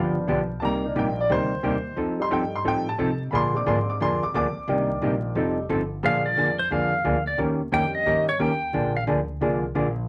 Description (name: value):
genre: country, western swing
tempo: 178 BPM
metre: 4/4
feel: swing 65% on 8ths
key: Bb mixolydian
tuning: A4 = 441 Hz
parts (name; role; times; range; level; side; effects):
- clear upright piano; accompaniment; 0.0-9.6 s; Eb3 to D6; -30 LUFS; equal; none
- hollow-body jazz guitar; accompaniment; 0.0-9.9 s; C3 to Bb4; -27 LUFS; equal; none
- upright bass; bass; 0.0-10.1 s; F1 to C3; -34 LUFS; equal; none
- pedal steel guitar; melody; 6.1-9.0 s; C5 to G5; -26 LUFS; equal; none
room: wet small room ambience, RT60 0.5 s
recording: vinyl crackle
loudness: -24 LUFS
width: mono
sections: 0.0-6.0 A section; 6.0-10.1 A section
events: upright piano solo 0.0-6.0; pedal steel guitar solo 6.0-10.1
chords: 0.0 G7; 0.6 Cm7; 2.0 F7; 3.3 Bb7; 4.7 Cm7; 5.4 F7; 6.0 Bb7; 7.4 Eb7; 8.7 Bb7